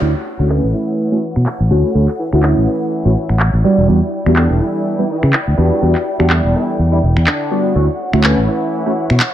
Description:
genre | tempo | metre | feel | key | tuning
filtered disco house | 124 BPM | 4/4 | swing 56% on 16ths | D major | A4 = 438 Hz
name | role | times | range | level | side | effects
funky polysynth comp | accompaniment | 0.0-8.9 s | G3 to B4 | -17 LUFS | right 1 dB | chorus, phaser, low-pass filter
dark studio violin section | sustained chords | 0.0-9.3 s | E4 to G5 | -24 LUFS | left 1 dB | low-pass filter
fingered electric bass | bass | 0.0-9.2 s | E1 to C#3 | -13 LUFS | equal | low-pass filter
electronic finger snaps and handclaps | drums | 0.4-9.3 s | none | -20 LUFS | equal | low-pass filter on hats, studio reverb, low-pass filter on snare
clear horn section | melody | 0.7-9.2 s | D3 to E4 | -24 LUFS | equal | low-pass filter, ping-pong delay
room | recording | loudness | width
moderate plate reverb, RT60 2.0 s | none | -12 LUFS | side -11 dB against mid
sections
0.0-9.3 A section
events
filter sweep on drum 0.0-9.3; filter sweep 0.0-9.3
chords
0.0 Dmaj7; 3.6 Em7; 7.8 Dmaj7

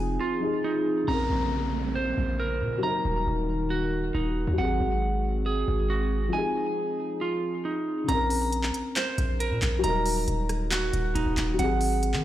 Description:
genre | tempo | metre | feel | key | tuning
hip hop, trap | 137 BPM | 4/4 | half-time | Bb minor | A4 = 441 Hz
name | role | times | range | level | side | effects
dark concert grand piano | accompaniment | 0.0-12.2 s | Db3 to Bb4 | -31 LUFS | left 4 dB | none
hollow soft pad | sustained chords | 0.0-8.1 s | Db3 to Bb4 | -33 LUFS | equal | chorus
clean electric guitar | arpeggios | 0.0-12.2 s | Eb4 to Bb5 | -29 LUFS | right 3 dB | ping-pong delay
hard-hitting 808-style bass | bass | 0.0-12.2 s | Eb1 to Eb3 | -28 LUFS | equal | none
downlifter | sound effects | 1.1-4.6 s | none | -38 LUFS | right 2 dB | none
trap drum kit | drums | 8.1-12.2 s | handclaps, hi-hat, rim click | -32 LUFS | equal | none
room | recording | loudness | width
little or no reverb | played on a big sound system in a bare room, stone room reverb | -24 LUFS | side -13 dB against mid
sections
0.0-1.1 A section; 1.1-8.1 B section; 8.1-12.2 A section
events
drums muted 0.2-1.1; break 6.3-8.1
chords
0.0 Fm7; 1.1 Bbmadd9; 2.8 Ebm; 4.6 Ab7; 6.3 Fm7; 8.1 Bbmadd9; 9.8 Ebm; 11.6 Ab7

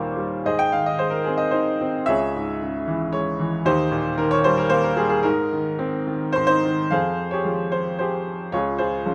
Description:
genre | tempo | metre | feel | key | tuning
classical, lyrical solo piano | 112 BPM | 3/4 | rubato | Ab major | A4 = 440 Hz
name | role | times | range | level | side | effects
clear baby grand piano | solo | 0.0-9.1 s | Db2 to C6 | -22 LUFS | equal | none
room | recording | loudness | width
light reverb | close, detailed microphones | -22 LUFS | mono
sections
0.0-6.9 A section; 6.9-9.1 B section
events
grand piano fill 6.1-6.9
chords
0.5 Ab; 2.1 Dbm; 3.6 Eb; 5.2 Abadd9; 6.9 Fmadd9; 8.5 Db

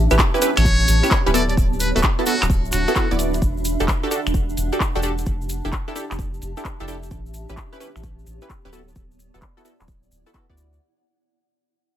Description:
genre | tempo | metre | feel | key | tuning
UK garage, two-step garage | 130 BPM | 4/4 | swing 66% on 16ths | unclear | A4 = 441 Hz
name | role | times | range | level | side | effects
soft dub sub bass | bass | 0.0-10.8 s | D1 to D2 | -22 LUFS | equal | sidechain pumping
granular cloud pad | texture | 0.0-10.8 s | B3 to B5 | -29 LUFS | right 2 dB | built-in reverb, sidechain pumping
punchy chord stab | stabs | 0.1-10.8 s | B3 to D5 | -23 LUFS | right 1 dB | chorus
garage drum kit | drums | 0.1-10.8 s | claves, finger snaps, handclaps, hi-hat | -24 LUFS | equal | low-pass filter on hats, low-pass filter on perc, low-pass filter on snare
egg shaker | percussion | 0.1-10.8 s | none | -32 LUFS | left 1 dB | none
electronic kick drum | drums | 0.2-10.6 s | none | -22 LUFS | equal | none
trumpet with metal mute | melody | 0.6-3.1 s | F#4 to D5 | -24 LUFS | equal | digital delay
room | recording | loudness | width
little or no reverb | none | -18 LUFS | side -11 dB against mid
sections
0.0-10.8 A section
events
fade-out 0.0-10.8; filter sweep on drum 0.0-10.8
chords
0.0 A9; 1.3 D69; 3.4 Em11; 5.3 Fmaj13; 7.1 A9; 8.7 D69

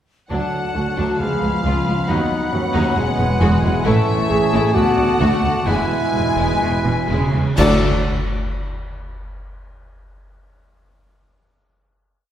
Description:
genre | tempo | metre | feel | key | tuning
cinematic, heroic adventure film score | 122-136 BPM | 4/4 | straight | D lydian | A4 = 439 Hz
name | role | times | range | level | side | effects
warm symphonic violin section | melody | 0.3-7.8 s | E5 to A5 | -27 LUFS | left 3 dB | none
clear studio violin section | second line | 0.3-7.9 s | D4 to D5 | -31 LUFS | left 3 dB | none
flute section | second line | 0.3-7.8 s | D5 to B5 | -27 LUFS | left 3 dB | none
warm oboe | second line | 0.3-7.8 s | A4 to F#5 | -29 LUFS | left 1 dB | none
rich studio viola section | accompaniment | 0.3-7.9 s | F#3 to F#4 | -27 LUFS | equal | none
dark trombone section | sustained chords | 0.3-7.8 s | A2 to C#4 | -27 LUFS | right 2 dB | none
mellow French horn section | sustained chords | 0.3-7.8 s | B3 to A4 | -26 LUFS | left 1 dB | none
dark trumpet | stabs | 0.3-7.8 s | B3 to D5 | -26 LUFS | right 1 dB | none
rich symphonic cello section | bass | 0.3-7.8 s | C#2 to C#3 | -23 LUFS | right 1 dB | none
rich symphonic double bass section | bass | 0.3-7.8 s | E1 to D#2 | -22 LUFS | right 1 dB | none
warm clarinet | second line | 1.2-7.8 s | G#3 to F#4 | -29 LUFS | left 1 dB | none
cymbal swell, clash cymbals and concert bass drum | percussion | 3.9-8.5 s | none | -25 LUFS | equal | none
room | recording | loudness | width
wet scoring stage reverb, RT60 2.0 s | heard from further back in the room | -16 LUFS | side -10 dB against mid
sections
0.3-7.6 theme; 7.6-9.5 final chord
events
slowing down 3.0-7.6; band accent 7.6-8.1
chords
0.3 D; 1.2 C#7; 2.1 B; 3.0 Eadd9; 3.9 A; 4.8 D; 5.7 E; 7.6 D

